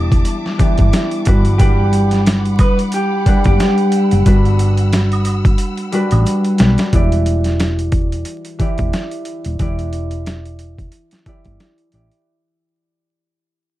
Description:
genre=hip hop, boom-bap hip-hop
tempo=90 BPM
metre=4/4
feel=swing 57% on 16ths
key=E minor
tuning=A4 = 442 Hz
part: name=concert harp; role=accompaniment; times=0.0-12.3 s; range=E3 to F#5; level=-18 LUFS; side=equal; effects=high-pass filter, low-pass filter
part: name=warm studio string section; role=sustained chords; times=0.0-6.9 s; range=G3 to E6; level=-27 LUFS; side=equal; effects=high-pass filter, low-pass filter
part: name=hollow-body short-scale fingered electric bass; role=bass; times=0.0-12.1 s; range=D#1 to B1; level=-16 LUFS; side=equal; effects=none
part: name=boom bap sampler-style drum kit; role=drums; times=0.1-12.3 s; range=hi-hat, kick drum, snare drum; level=-16 LUFS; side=equal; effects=overdrive
part: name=maracas and woodblock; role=percussion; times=0.3-6.8 s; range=none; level=-32 LUFS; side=right 4 dB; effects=none
part: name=electric guitar at the edge of break-up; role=melody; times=1.6-4.2 s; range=G4 to B4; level=-20 LUFS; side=right 1 dB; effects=high-pass filter, low-pass filter
room=light reverb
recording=dark, warm production, vinyl crackle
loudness=-12 LUFS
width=side -15 dB against mid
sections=0.0-6.9 A section; 6.9-12.3 B section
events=drum fill 5.6-6.9; fade-out 6.9-12.3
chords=0.0 Em7; 1.3 Gmaj7; 6.9 Em7

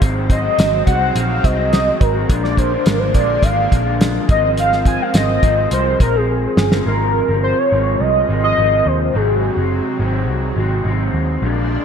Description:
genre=indie pop, bedroom pop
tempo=105 BPM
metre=4/4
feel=straight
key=Ab major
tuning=A4 = 440 Hz
part: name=warm velvety synth lead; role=melody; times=0.0-9.7 s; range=Ab4 to Ab5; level=-17 LUFS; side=equal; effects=analog chorus, digital delay
part: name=electric guitar through a small old amp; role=accompaniment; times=0.0-11.8 s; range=Ab2 to Bb4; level=-23 LUFS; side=left 2 dB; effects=analog chorus, vibrato effect
part: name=lush unison pad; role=sustained chords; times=0.0-11.8 s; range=C3 to D4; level=-25 LUFS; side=right 1 dB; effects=chorus
part: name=vintage muted picked electric bass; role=bass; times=0.0-11.8 s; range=Gb1 to Eb2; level=-20 LUFS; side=equal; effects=none
part: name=cloth-damped thuddy drum kit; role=drums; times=0.0-6.8 s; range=hi-hat, kick drum, snare drum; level=-16 LUFS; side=equal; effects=gated reverb
room=moderate lush hall reverb, RT60 2.2 s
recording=bright 1980s-style digital production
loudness=-14 LUFS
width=side -7 dB against mid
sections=0.0-6.9 A section; 6.9-11.8 B section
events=soft synth lead solo 0.0-6.9; drum fill 6.3-6.9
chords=0.0 Ab7; 2.3 Bb7; 4.3 Ab69; 9.1 Ab7

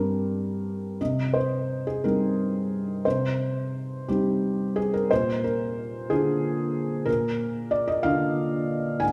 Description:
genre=neoclassical minimalist piano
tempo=60 BPM (dotted quarters)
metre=6/8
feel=uneven beats, rubato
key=C minor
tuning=A4 = 440 Hz
part: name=felt-muted upright piano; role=solo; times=0.0-9.1 s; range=G2 to Ab5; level=-26 LUFS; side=equal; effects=none
room=moderate recital hall reverb, RT60 1.6 s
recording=recorded in a church or concert hall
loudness=-26 LUFS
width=mono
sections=1.0-9.1 A section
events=none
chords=0.0 Gsus4; 1.0 Cm; 5.1 Bb

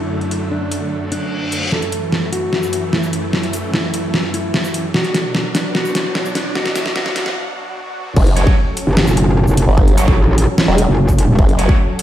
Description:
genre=heavy wobble dubstep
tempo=149 BPM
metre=4/4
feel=half-time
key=F# minor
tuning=A4 = 441 Hz
part: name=mellow electric guitar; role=melody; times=0.0-7.3 s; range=D4 to A4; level=-23 LUFS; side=equal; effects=low-pass filter, digital delay
part: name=supersaw chords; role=sustained chords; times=0.0-12.0 s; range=F#2 to A4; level=-23 LUFS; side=equal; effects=sidechain pumping, low-pass filter
part: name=dubstep drum kit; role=drums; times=0.2-12.0 s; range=crash cymbal, hi-hat, shaker, snare drum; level=-19 LUFS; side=equal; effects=overdrive
part: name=reverse cymbal, riser and swell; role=sound effects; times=1.1-8.2 s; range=none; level=-28 LUFS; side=equal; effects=none
part: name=formant-sweep wobble bass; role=bass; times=8.2-11.7 s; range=E1 to G1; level=-14 LUFS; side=equal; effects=chorus, overdrive
part: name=electronic kick drum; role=drums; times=8.2-11.8 s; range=none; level=-13 LUFS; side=equal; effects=overdrive
part: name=fuzz guitar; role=stabs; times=8.4-11.8 s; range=A3 to C#5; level=-23 LUFS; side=right 2 dB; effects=distortion, vintage 12-bit sampler grit, digital delay
part: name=metallic wobble bass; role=bass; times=8.9-11.4 s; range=F#1 to A1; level=-12 LUFS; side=equal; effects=chorus, overdrive
room=light reverb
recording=played on a big sound system in a bare room, stone room reverb, high-pass filter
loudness=-14 LUFS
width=side -12 dB against mid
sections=0.0-1.7 A section; 1.7-8.2 B section; 8.2-12.0 C section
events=filter sweep 0.0-1.7, 1.7-8.2; reverse cymbal 1.1-1.7; build-up 1.7-8.2; drum fill 1.7-7.4; riser 1.7-7.4; filter sweep on clean electric guitar 1.7-8.2; break 7.4-8.2; swell 7.4-8.2; drop 8.2-12.0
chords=0.0 D/F#; 1.7 F#m7; 4.9 Bm; 8.2 F#m

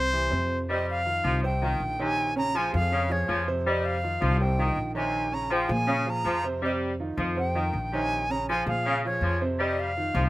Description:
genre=latin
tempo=162 BPM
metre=4/4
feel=straight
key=F minor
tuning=A4 = 438 Hz
part: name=bright trumpet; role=melody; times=0.0-0.6 s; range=C5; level=-26 LUFS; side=left 1 dB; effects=slapback echo
part: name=clear grand piano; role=accompaniment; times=0.0-10.3 s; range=C3 to Db5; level=-32 LUFS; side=right 3 dB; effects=slapback echo
part: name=upright bass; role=bass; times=0.0-10.3 s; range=Bb1 to Bb2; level=-29 LUFS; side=equal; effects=none
part: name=bright reedy concert flute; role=melody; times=0.7-10.3 s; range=Db5 to Bb5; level=-29 LUFS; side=equal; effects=none
part: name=bright saxophone section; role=second line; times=0.7-10.3 s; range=C3 to G3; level=-29 LUFS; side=left 1 dB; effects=none
room=little or no reverb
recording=recorded outdoors, with no room sound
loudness=-24 LUFS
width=side -17 dB against mid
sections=0.7-10.3 A section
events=none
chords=0.0 C; 0.7 F5; 2.2 Bbm7; 3.7 F5; 5.1 Bbm7; 6.6 F5; 8.1 Bbm7; 9.6 F5

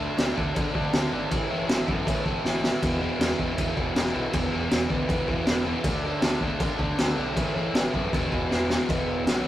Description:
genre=punk rock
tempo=159 BPM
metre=4/4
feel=straight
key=unclear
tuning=A4 = 441 Hz
part: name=biting overdriven guitar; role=riff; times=0.0-9.5 s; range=E2 to D4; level=-28 LUFS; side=equal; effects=none
part: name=fuzz picked electric bass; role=bass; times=0.0-9.5 s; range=E1 to D3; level=-33 LUFS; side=equal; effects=overdrive
part: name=raw garage drum kit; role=drums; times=0.2-9.3 s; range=crash cymbal, kick drum, snare drum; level=-26 LUFS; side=equal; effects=none
room=light reverb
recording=rough rehearsal-room recording, warm saturation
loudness=-23 LUFS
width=side -13 dB against mid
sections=0.0-8.9 A section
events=drum fill 2.4-2.8, 8.5-8.9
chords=0.0 D5; 1.3 A5; 2.8 E5; 5.8 D5; 7.4 A5; 8.1 E5

